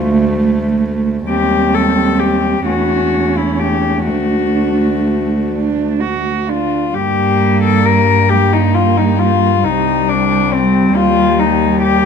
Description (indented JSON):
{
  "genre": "classical, lyrical piece for cello ensemble",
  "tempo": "41-46 BPM (dotted quarters)",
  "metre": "6/8",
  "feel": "rubato",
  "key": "G minor",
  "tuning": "A4 = 440 Hz",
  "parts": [
    { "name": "dark cello", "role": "second line", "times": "0.0-12.1 s", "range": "G3 to F#4", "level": "-19 LUFS", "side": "right 10 dB", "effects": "none" },
    { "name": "dark cello", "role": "accompaniment", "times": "0.0-12.1 s", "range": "G3 to Bb3", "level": "-18 LUFS", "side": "left 2 dB", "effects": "none" },
    { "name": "warm cello", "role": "bass", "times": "0.0-12.1 s", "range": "C2 to G2", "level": "-18 LUFS", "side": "right 2 dB", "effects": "none" },
    { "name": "warm cello", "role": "melody", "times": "1.3-12.1 s", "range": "C4 to Bb4", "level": "-15 LUFS", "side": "left 8 dB", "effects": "none" }
  ],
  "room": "moderate recital hall reverb, RT60 1.5 s",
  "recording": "close, detailed microphones",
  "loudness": "-12 LUFS",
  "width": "side -6 dB against mid",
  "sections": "0.0-6.9 A section; 6.9-12.1 B section",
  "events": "none",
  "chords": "0.0 D5; 1.3 Cm/Eb; 2.7 A/E; 4.1 D; 6.9 Gm; 9.6 Cm",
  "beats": "| 1.29 2.66 | 4.08 5.52 | 6.95 8.31 | 9.63 10.96"
}